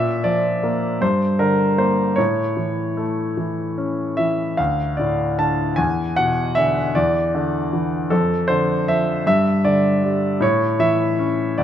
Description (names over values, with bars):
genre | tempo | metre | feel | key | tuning
classical, lyrical solo piano | 51 BPM (dotted quarters) | 6/8 | rubato | D minor | A4 = 440 Hz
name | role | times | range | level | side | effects
clear grand piano | solo | 0.0-11.6 s | D2 to A5 | -17 LUFS | equal | none
room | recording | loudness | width
moderate concert hall reverb, RT60 2.1 s | close, detailed microphones | -17 LUFS | side -10 dB against mid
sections
0.0-11.6 A section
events
none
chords
0.0 Bb; 1.0 Gm; 2.2 A; 4.6 D5; 5.8 E5; 7.0 Dsus2/E; 8.1 Dm/F; 9.3 G5; 10.4 A